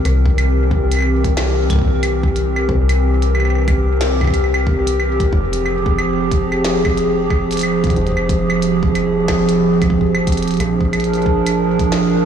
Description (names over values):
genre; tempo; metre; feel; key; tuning
IDM; 91 BPM; 4/4; swing 62% on 16ths; unclear; A4 = 439 Hz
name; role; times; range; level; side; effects
warbly tape-like pad; sustained chords; 0.0-12.3 s; E3 to Bb4; -16 LUFS; right 2 dB; chorus, built-in reverb
metallic FM bass; bass; 0.0-12.3 s; F1 to C2; -20 LUFS; left 1 dB; none
glitchy drum kit; drums; 0.1-12.1 s; claves, hi-hat, snare drum; -25 LUFS; right 1 dB; overdrive, tape echo
electronic kick drum; drums; 0.3-11.9 s; none; -18 LUFS; equal; none
room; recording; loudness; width
moderate lush hall reverb, RT60 2.5 s; blown-out, overdriven recording, overdrive, small room ambience; -14 LUFS; side -8 dB against mid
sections
0.0-12.3 A section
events
none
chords
0.1 C7; 5.3 Fmadd9; 10.6 Bb7